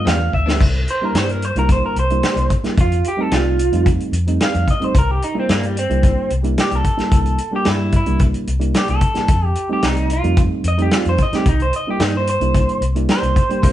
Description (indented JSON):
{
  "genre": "straight-eighth soul blues",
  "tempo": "110 BPM",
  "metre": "4/4",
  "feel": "straight",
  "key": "C mixolydian",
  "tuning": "A4 = 440 Hz",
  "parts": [
    { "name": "electric guitar through a small old amp", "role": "melody", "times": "0.0-13.7 s", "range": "G3 to F5", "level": "-21 LUFS", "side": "right 1 dB", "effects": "none" },
    { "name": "reed electric piano", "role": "accompaniment", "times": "0.0-13.7 s", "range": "G3 to G4", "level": "-24 LUFS", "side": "right 2 dB", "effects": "none" },
    { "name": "vintage muted fingered electric bass", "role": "bass", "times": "0.0-13.7 s", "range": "C2 to G2", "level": "-20 LUFS", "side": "left 1 dB", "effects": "none" },
    { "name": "direct-recorded clean electric guitar", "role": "stabs", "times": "0.1-0.6, 13.6-13.7 s", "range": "G2 to E4", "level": "-27 LUFS", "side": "left 3 dB", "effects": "none" },
    { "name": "warm soul drum kit", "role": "drums", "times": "0.1-13.7 s", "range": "crash cymbal, hi-hat, kick drum, snare drum", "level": "-18 LUFS", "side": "equal", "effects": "none" }
  ],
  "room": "light reverb",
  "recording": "band playing live in one room, nothing above 10.9 kHz",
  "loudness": "-15 LUFS",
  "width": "side -12 dB against mid",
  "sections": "0.6-13.7 A section",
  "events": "drum fill 0.3; clean electric guitar solo 0.6-13.7",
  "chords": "0.0 G7; 0.6 C7; 2.8 F7; 4.9 C7; 9.3 F7; 11.5 C7",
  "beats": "0.06 | 0.60 1.15 1.69 2.23 | 2.77 3.32 3.86 4.40 | 4.95 5.49 6.03 6.57 | 7.12 7.66 8.20 8.74 | 9.29 9.83 10.37 10.92 | 11.46 12.00 12.55 13.09 | 13.63"
}